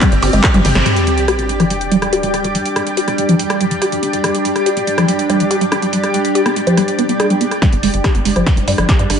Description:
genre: psychedelic trance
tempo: 142 BPM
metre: 4/4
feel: straight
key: unclear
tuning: A4 = 443 Hz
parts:
  - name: evolving wavetable pad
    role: sustained chords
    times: 0.0-9.2 s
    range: G3 to D4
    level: -20 LUFS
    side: equal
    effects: chorus, built-in reverb, phaser, sidechain pumping
  - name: woody wave-folded pluck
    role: riff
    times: 0.0-9.2 s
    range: F3 to Ab4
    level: -17 LUFS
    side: moving between left 4 dB and right 2 dB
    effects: chorus, auto-pan, sidechain pumping, analog delay
  - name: electronic kick drum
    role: drums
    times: 0.0-0.5, 7.6-9.0 s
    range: none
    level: -14 LUFS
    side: equal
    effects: none
  - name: techno drum kit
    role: drums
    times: 0.0-9.2 s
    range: handclaps, hi-hat, ride cymbal, rim click, snare drum, toms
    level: -20 LUFS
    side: right 1 dB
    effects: none
  - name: granular cloud pad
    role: texture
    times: 0.0-9.2 s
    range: G4 to G5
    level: -21 LUFS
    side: right 1 dB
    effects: built-in reverb, analog chorus, sidechain pumping
  - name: tight sequencer bass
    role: bass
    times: 0.1-0.8, 7.7-9.2 s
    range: G1 to G2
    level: -17 LUFS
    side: equal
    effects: none
  - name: sub drop and riser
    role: sound effects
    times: 0.9-2.5, 8.6-9.2 s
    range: none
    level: -22 LUFS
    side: equal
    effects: none
room: moderate plate reverb, RT60 1.9 s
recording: dreamy mix soaked in reverb, nothing above 10.3 kHz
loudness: -12 LUFS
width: side -7 dB against mid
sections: 0.9-7.6 A section; 7.6-9.2 B section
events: drum fill 0.5-0.9, 7.6-9.2; band accent 0.8; impact 0.9-2.5; filter sweep on ambient pad 0.9-7.6; build-up 7.6-9.2; filter sweep on synth arpeggio sound 7.6-9.2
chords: 0.0 G5

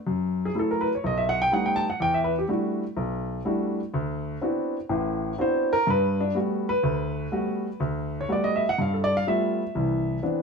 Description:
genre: solo jazz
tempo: 124 BPM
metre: 4/4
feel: swing 67% on 8ths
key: G major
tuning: A4 = 440 Hz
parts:
  - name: warm grand piano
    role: solo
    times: 0.1-10.4 s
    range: A1 to A5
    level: -23 LUFS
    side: equal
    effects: none
room: moderate stone room reverb, RT60 1.1 s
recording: band playing live in one room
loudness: -23 LUFS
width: side -5 dB against mid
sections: 0.0-9.8 A section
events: grand piano solo 0.0-10.4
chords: 0.1 F#m7; 1.0 B7b13; 2.0 Em11; 3.9 D13; 5.9 Gmaj9; 8.8 G9; 9.8 Cmaj9

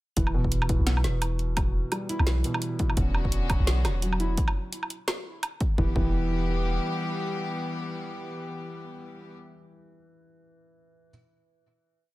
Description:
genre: half-time drum and bass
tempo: 171 BPM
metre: 4/4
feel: swing 58% on 16ths, half-time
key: E dorian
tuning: A4 = 440 Hz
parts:
  - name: felt-muted upright piano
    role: arpeggios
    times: 0.2-11.1 s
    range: B2 to E4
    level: -33 LUFS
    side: equal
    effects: dub echo
  - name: long sustained 808-style bass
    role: bass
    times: 0.2-6.8 s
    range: E1 to B1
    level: -26 LUFS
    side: equal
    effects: none
  - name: drum and bass drum kit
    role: drums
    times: 0.2-5.7 s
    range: hi-hat, snare drum, woodblock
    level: -30 LUFS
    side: right 1 dB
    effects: none
  - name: electronic kick drum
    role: drums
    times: 0.2-6.1 s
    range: none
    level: -26 LUFS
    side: equal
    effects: none
  - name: rich chamber string section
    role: sustained chords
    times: 3.0-9.3 s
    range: D3 to G4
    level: -33 LUFS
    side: left 1 dB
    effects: sidechain pumping
room: light reverb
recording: none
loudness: -25 LUFS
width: side -18 dB against mid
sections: 0.2-5.8 drop; 5.8-8.6 final chord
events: drop 0.2-5.8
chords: 0.2 Em; 3.0 Bmadd9/E; 5.8 Em

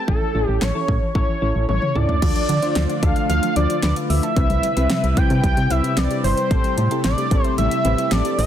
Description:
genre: synth-pop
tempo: 112 BPM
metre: 4/4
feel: straight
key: A minor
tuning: A4 = 442 Hz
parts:
  - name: octave-doubled lead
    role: melody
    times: 0.0-8.5 s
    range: A4 to G5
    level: -23 LUFS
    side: equal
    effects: chorus, ping-pong delay
  - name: soft round pluck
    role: arpeggios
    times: 0.0-8.5 s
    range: E3 to F6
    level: -30 LUFS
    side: right 3 dB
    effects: chorus, ping-pong delay
  - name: soft electric-piano-like synth keys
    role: accompaniment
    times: 0.1-8.5 s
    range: C4 to C5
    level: -27 LUFS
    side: left 3 dB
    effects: chorus
  - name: solid FM bass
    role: bass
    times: 0.1-8.5 s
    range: G1 to D3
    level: -21 LUFS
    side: equal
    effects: none
  - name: pop drum kit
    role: drums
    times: 0.1-8.5 s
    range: crash cymbal, hi-hat, kick drum, snare drum, toms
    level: -22 LUFS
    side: equal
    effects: overdrive
  - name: phased analog pad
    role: sustained chords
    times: 2.6-8.5 s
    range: C3 to B4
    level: -26 LUFS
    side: equal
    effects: phaser, chorus, tremolo
room: light reverb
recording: dense, heavily limited modern master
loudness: -17 LUFS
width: side -10 dB against mid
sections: 0.0-2.2 A section; 2.2-8.5 B section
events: drum fill 1.7-2.2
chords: 0.1 A; 2.2 Dm; 4.4 Cmaj7; 6.5 Am7

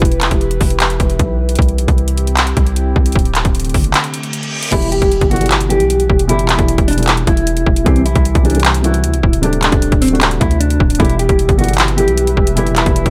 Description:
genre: hip hop, trap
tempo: 153 BPM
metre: 4/4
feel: half-time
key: E minor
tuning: A4 = 440 Hz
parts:
  - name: warbly tape-like pad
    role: sustained chords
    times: 0.0-4.7, 11.7-13.1 s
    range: C3 to E5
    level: -26 LUFS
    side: equal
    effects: chorus, built-in reverb, phaser
  - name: long sustained 808-style bass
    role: bass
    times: 0.0-13.1 s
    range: D1 to D2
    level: -19 LUFS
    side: equal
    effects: none
  - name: trap drum kit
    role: drums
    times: 0.0-13.1 s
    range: crash cymbal, handclaps, hi-hat, kick drum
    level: -17 LUFS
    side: equal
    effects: none
  - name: reverse cymbal and impact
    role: sound effects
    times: 4.1-6.3 s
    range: none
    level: -28 LUFS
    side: equal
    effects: none
  - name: mellow electric guitar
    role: melody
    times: 4.7-13.1 s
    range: C4 to G4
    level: -20 LUFS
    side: equal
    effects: tremolo, delay
  - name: felt-muted upright piano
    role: accompaniment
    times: 4.7-13.1 s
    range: B2 to A4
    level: -21 LUFS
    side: equal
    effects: none
room: little or no reverb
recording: none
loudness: -14 LUFS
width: mono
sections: 0.0-4.7 A section; 4.7-13.1 B section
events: break 0.0-4.7; kick muted 3.9-4.7; reverse cymbal 4.1-4.7; impact 4.7-6.3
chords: 0.0 Em; 1.6 C; 3.2 D7sus4; 4.7 Em; 7.9 C; 9.4 D7sus4; 11.0 Em

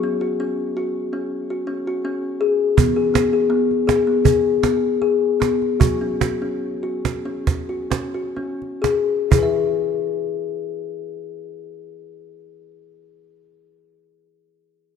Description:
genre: world meditative, meditative tuned percussion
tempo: 61-82 BPM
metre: 4/4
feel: straight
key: E major pentatonic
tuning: A4 = 439 Hz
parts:
  - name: kalimba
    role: arpeggios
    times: 0.0-13.9 s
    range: E3 to E5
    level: -20 LUFS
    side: left 4 dB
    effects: none
  - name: cajon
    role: percussion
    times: 2.8-9.8 s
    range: none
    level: -19 LUFS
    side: right 5 dB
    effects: none
room: wet echo chamber reverb, RT60 1.9 s, small room ambience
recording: none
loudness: -18 LUFS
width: side -7 dB against mid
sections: 0.0-9.3 A section; 9.3-13.2 B section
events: slowing down 2.8-9.3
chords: 0.0 F#5; 2.8 E; 5.8 F#5; 9.3 E

